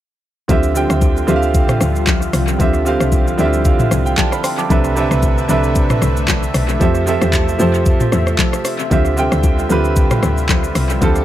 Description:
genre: amapiano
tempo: 114 BPM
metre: 4/4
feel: swing 55% on 16ths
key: D dorian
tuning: A4 = 440 Hz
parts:
  - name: clear grand piano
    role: accompaniment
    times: 0.5-11.2 s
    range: C3 to D6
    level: -18 LUFS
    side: right 3 dB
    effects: dub echo
  - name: warm analog pad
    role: sustained chords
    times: 0.5-11.2 s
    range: C3 to E5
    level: -25 LUFS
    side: left 2 dB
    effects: chorus, tremolo, sidechain pumping
  - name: woody log drum bass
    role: bass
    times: 0.5-11.2 s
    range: B1 to F2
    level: -18 LUFS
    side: equal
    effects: none
  - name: smooth R&B drum kit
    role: drums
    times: 0.5-11.2 s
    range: handclaps, hi-hat, kick drum, rim click, shaker, toms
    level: -17 LUFS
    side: equal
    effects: dub echo
  - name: congas and bongos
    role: percussion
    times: 0.5-11.2 s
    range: none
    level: -26 LUFS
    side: left 10 dB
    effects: dub echo
room: little or no reverb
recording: echo-heavy mix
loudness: -13 LUFS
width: side -12 dB against mid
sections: 0.5-11.2 A section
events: drop 0.5-11.2; grand piano fill 3.1-4.7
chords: 0.5 Dm11; 4.7 Cmaj13; 6.8 Fmaj7; 8.9 Dm11

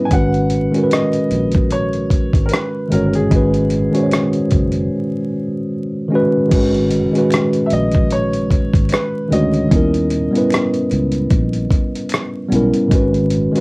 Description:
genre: lo-fi hip hop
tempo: 75 BPM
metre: 4/4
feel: swing 55% on 16ths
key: G# minor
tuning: A4 = 440 Hz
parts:
  - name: mellow tine electric piano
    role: accompaniment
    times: 0.0-13.6 s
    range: D#3 to C#5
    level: -16 LUFS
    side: equal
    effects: medium stereo tremolo, cassette tape, plate reverb
  - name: clear upright piano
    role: melody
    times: 0.1-12.5 s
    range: G#4 to G#5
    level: -24 LUFS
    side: equal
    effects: cassette tape, plate reverb
  - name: fingered electric bass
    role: bass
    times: 0.1-13.5 s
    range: F#1 to D#2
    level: -20 LUFS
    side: equal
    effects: none
  - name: dusty soul sampler-style drum kit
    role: drums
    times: 0.1-13.6 s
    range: crash cymbal, hi-hat, kick drum, rim click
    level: -17 LUFS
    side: equal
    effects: none
  - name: finger snap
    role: percussion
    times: 7.3-12.3 s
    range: none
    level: -34 LUFS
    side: left 2 dB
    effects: none
room: moderate small room reverb, RT60 0.6 s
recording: home recording on cassette, vinyl crackle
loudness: -14 LUFS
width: side -27 dB against mid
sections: 0.0-6.5 A section; 6.5-13.6 B section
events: break 4.9-6.5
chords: 0.1 G#m9; 3.3 G#m7; 6.5 G#m9; 9.7 D#7b9b13; 12.9 G#m7

